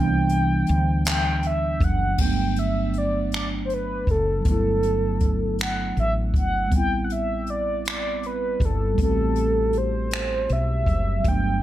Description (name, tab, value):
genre	slow six-eight R&B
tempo	53 BPM (dotted quarters)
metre	6/8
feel	straight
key	G major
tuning	A4 = 442 Hz
part	mellow horn-like synth lead	melody	0.0-11.6 s	A4 to G5	-26 LUFS	equal	chorus, plate reverb
part	mellow tine electric piano	accompaniment	0.0-11.6 s	E3 to G4	-27 LUFS	right 3 dB	phaser, plate reverb
part	woody fretless electric bass	bass	0.0-11.6 s	F#1 to D2	-25 LUFS	equal	analog chorus
part	jazz brush drum kit	drums	0.3-11.4 s	crash cymbal, finger snaps, handclaps, hi-hat, kick drum	-25 LUFS	equal	none
room	light reverb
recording	none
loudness	-20 LUFS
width	side -13 dB against mid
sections	0.0-2.2 A section; 2.2-11.6 B section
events	none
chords	0.0 Cmaj9; 2.2 Gmaj9; 6.7 Am9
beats	1.05 | 2.19 3.32 | 4.45 5.58 | 6.72 7.85 | 8.98 10.11 | 11.24